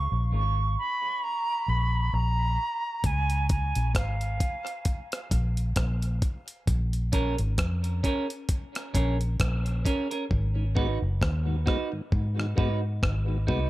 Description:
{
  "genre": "dub reggae",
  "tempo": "66 BPM",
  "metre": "4/4",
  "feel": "swing 57% on 16ths",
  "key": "Db mixolydian",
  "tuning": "A4 = 440 Hz",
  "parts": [
    { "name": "silver concert flute", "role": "melody", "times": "0.0-5.3 s", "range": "F5 to Db6", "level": "-30 LUFS", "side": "right 2 dB", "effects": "dub echo" },
    { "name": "vintage muted fingered electric bass", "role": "bass", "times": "0.0-13.7 s", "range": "Gb1 to Ab2", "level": "-26 LUFS", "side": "equal", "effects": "none" },
    { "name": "breakbeat sampler-style drum kit", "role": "drums", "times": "3.0-13.7 s", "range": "hi-hat, kick drum, rim click", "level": "-28 LUFS", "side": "equal", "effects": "none" },
    { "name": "clean electric guitar", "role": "accompaniment", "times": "7.1-13.7 s", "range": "Db4 to Cb5", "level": "-32 LUFS", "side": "right 3 dB", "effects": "warbly pitch drift, dub echo" },
    { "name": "mellow tonewheel organ", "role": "accompaniment", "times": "10.6-13.6 s", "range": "Ab2 to Gb4", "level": "-36 LUFS", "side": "left 2 dB", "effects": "slow rotary speaker, dub echo" }
  ],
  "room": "little or no reverb",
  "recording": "none",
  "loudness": "-25 LUFS",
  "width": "side -17 dB against mid",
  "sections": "0.0-13.7 A section",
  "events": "break 0.0-10.3; hi-hats muted 10.3-13.7",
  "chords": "0.0 Db5; 6.7 Bbm7; 10.3 Abm7",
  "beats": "0.31 1.22 2.13 | 3.04 3.94 4.85 5.76 | 6.67 7.58 8.49 9.39 | 10.30 11.21 12.12 13.03"
}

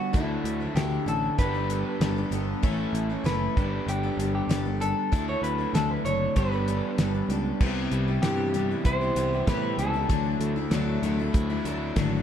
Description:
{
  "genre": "folk rock and heartland rock",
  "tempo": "96 BPM",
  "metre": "4/4",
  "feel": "straight",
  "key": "unclear",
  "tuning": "A4 = 439 Hz",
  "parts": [
    { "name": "electric guitar through a small old amp", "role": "melody", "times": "0.0-11.0 s", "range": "E4 to C#5", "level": "-31 LUFS", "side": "left 1 dB", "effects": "digital delay" },
    { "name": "picked twelve-string acoustic guitar", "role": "accompaniment", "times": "0.0-12.2 s", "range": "A2 to A4", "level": "-31 LUFS", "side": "left 5 dB", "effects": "none" },
    { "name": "crunchy overdriven guitar", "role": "riff", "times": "0.0-12.2 s", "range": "G2 to A4", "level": "-31 LUFS", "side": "right 3 dB", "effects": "none" },
    { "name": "picked electric bass", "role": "bass", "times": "0.1-12.2 s", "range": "F#1 to A2", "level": "-30 LUFS", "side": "equal", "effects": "none" },
    { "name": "damped 70s drum kit", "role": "drums", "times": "0.1-12.1 s", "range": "crash cymbal, hi-hat, kick drum, snare drum", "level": "-27 LUFS", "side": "equal", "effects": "none" }
  ],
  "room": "light reverb",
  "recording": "dark, warm production",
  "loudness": "-24 LUFS",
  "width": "side -9 dB against mid",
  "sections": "0.0-7.6 A section; 7.6-12.2 B section",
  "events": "none",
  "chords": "0.1 Dsus2; 1.4 Gadd9; 2.6 A; 3.6 Gadd9; 5.1 Dsus2; 6.4 Gadd9; 7.6 Cmaj7; 10.1 Dadd9",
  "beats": "| 0.15 0.77 1.39 2.01 | 2.63 3.26 3.88 4.50 | 5.12 5.74 6.37 6.99 | 7.61 8.23 8.85 9.47 | 10.10 10.72 11.34 11.96"
}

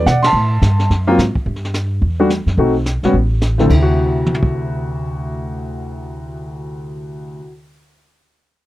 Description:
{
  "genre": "jazz piano trio",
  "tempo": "215 BPM",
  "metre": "4/4",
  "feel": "swing 61% on 8ths",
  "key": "D mixolydian",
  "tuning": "A4 = 441 Hz",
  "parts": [
    { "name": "warm grand piano", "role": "melody", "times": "0.0-7.5 s", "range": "D2 to C6", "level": "-17 LUFS", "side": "equal", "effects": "none" },
    { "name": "upright bass", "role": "bass", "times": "0.0-7.4 s", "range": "A1 to B2", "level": "-18 LUFS", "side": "equal", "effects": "none" },
    { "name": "jazz brush drum kit", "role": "drums", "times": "0.1-4.5 s", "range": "brushed snare drum, crash cymbal, hi-hat, kick drum, ride cymbal, snare drum, toms", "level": "-22 LUFS", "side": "equal", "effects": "none" }
  ],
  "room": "little or no reverb",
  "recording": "dry, close 1970s-style studio recording",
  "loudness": "-14 LUFS",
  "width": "side -16 dB against mid",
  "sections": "0.0-1.5 A section; 1.5-3.7 B section; 3.7-5.9 C section",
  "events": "band accent 0.2",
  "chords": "0.3 Am7; 0.9 F#(b5, no3); 1.5 N.C.; 2.0 Esus2; 2.6 B7b9; 3.1 A5; 3.7 D9",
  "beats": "0.07 | 0.35 0.62 0.90 1.18 | 1.46 1.74 2.02 2.30 | 2.58 2.86 3.14 3.42 | 3.70 3.98 4.25 4.53 | 4.81 5.09 5.37 5.65"
}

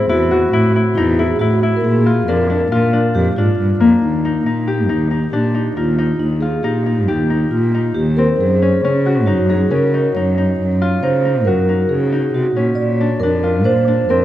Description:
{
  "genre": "contemporary instrumental, chamber music in an uneven meter",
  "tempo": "137 BPM",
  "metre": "5/4",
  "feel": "straight",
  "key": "unclear",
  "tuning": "A4 = 440 Hz",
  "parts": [
    { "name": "vibraphone with soft mallets", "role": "second line", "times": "0.0-14.2 s", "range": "Eb4 to D5", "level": "-19 LUFS", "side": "right 2 dB", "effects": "none" },
    { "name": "Celtic harp", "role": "arpeggios", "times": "0.0-14.2 s", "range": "Bb3 to G4", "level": "-19 LUFS", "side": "left 3 dB", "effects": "none" },
    { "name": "dark cello", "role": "bass", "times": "0.0-14.2 s", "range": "Eb2 to Db3", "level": "-16 LUFS", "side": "equal", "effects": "none" }
  ],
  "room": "moderate concert hall reverb, RT60 2.0 s",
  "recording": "none",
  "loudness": "-13 LUFS",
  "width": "side -13 dB against mid",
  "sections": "0.0-4.0 A section; 4.0-14.2 B section",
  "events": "none",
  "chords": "0.0 A5; 1.8 Bb; 4.0 Eb; 8.4 Gb5; 12.8 Bb",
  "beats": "0.08 0.52 0.96 1.40 | 1.83 2.27 2.71 3.15 3.58 | 4.02 4.46 4.90 5.33 5.77 | 6.21 6.65 7.09 7.53 7.96 | 8.40 8.84 9.28 9.71 10.15 | 10.59 11.03 11.47 11.90 12.34 | 12.78 13.22 13.65 14.09"
}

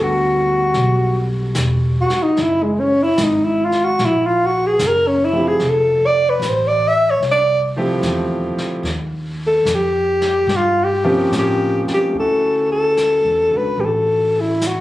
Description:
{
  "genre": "jazz ballad",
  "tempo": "74 BPM",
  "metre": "4/4",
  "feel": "swing 67% on 8ths",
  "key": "D major",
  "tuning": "A4 = 440 Hz",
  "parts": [
    { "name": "breathy alto saxophone", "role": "melody", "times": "0.0-14.8 s", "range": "G#3 to E5", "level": "-15 LUFS", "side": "equal", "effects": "none" },
    { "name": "warm grand piano", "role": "accompaniment", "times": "0.0-14.8 s", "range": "F3 to G4", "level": "-22 LUFS", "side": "right 1 dB", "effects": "none" },
    { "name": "upright bass", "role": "bass", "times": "0.0-14.8 s", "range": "E1 to A2", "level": "-23 LUFS", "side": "equal", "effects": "none" },
    { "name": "vintage brush drum kit", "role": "drums", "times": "0.7-14.8 s", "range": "brushed snare drum, hi-hat, snare drum", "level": "-30 LUFS", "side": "left 1 dB", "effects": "none" }
  ],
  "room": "light reverb",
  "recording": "recorded on a phone in the room, club reverb",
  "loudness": "-14 LUFS",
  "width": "side -15 dB against mid",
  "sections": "0.0-12.1 A section; 12.1-14.8 B section",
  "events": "alto saxophone solo 0.0-12.1",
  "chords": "0.0 D69; 2.4 F#7; 5.6 Fmaj9; 8.8 Eb13; 12.1 Dmaj9",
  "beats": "0.75 1.56 | 2.37 3.18 3.99 4.79 | 5.60 6.41 7.22 8.03 | 8.85 9.66 10.48 11.31 | 12.14 12.96 13.78 14.60"
}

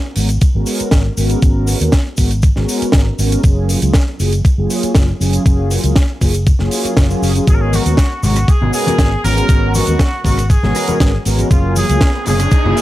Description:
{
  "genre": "nu-disco, nu disco",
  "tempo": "119 BPM",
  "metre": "4/4",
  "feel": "straight",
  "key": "unclear",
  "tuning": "A4 = 439 Hz",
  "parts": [
    { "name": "mellow synth brass", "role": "accompaniment", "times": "0.2-12.8 s", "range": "F#3 to A#4", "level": "-19 LUFS", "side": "equal", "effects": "chorus, sidechain pumping" },
    { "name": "fingered electric bass with an envelope filter", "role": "bass", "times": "0.2-12.7 s", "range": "F#1 to D#2", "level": "-16 LUFS", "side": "equal", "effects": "none" },
    { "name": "tight funk drum kit", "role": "drums", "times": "0.2-12.8 s", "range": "hi-hat, rim click, shaker, snare drum", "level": "-21 LUFS", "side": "right 1 dB", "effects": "none" },
    { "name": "electronic kick drum", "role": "drums", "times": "0.4-12.6 s", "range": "none", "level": "-12 LUFS", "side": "equal", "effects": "none" },
    { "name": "clear trumpet section", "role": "melody", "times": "7.5-12.8 s", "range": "E#4 to A#4", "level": "-21 LUFS", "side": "equal", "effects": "none" },
    { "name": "congas", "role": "percussion", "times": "7.7-12.8 s", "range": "none", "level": "-23 LUFS", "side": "left 2 dB", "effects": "none" },
    { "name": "riser", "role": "sound effects", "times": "11.9-12.8 s", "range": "none", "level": "-24 LUFS", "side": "equal", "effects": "none" }
  ],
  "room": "small room ambience",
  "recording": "dry, gritty hardware recording",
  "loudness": "-12 LUFS",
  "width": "side -15 dB against mid",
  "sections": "0.0-12.8 A section",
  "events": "riser 11.9-12.8",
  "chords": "0.0 G#m11; 3.4 F#maj9; 7.5 G#m11; 11.5 F#maj9",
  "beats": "0.42 0.92 | 1.43 1.93 2.43 2.94 | 3.44 3.95 4.45 4.96 | 5.46 5.96 6.47 6.97 | 7.48 7.98 8.48 8.99 | 9.49 10.00 10.50 11.01 | 11.51 12.01 12.52"
}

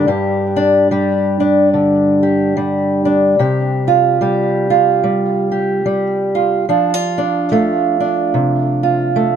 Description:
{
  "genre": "folk, solo fingerstyle acoustic guitar",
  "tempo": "73 BPM",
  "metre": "4/4",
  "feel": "swing 58% on 8ths",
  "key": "unclear",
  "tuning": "A4 = 440 Hz",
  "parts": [
    { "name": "fingerpicked old ladder-braced acoustic guitar", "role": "solo", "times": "0.0-9.4 s", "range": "G2 to G4", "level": "-13 LUFS", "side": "right 1 dB", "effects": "tape echo" }
  ],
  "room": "light reverb",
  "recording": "close, detailed microphones",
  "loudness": "-13 LUFS",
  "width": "side -8 dB against mid",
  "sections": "0.1-9.4 A section",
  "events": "none",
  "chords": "0.1 G5; 3.4 Csus4; 6.7 F6",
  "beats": "| 0.07 0.90 1.72 2.55 | 3.37 4.20 5.02 5.85 | 6.68 7.50 8.33 9.15"
}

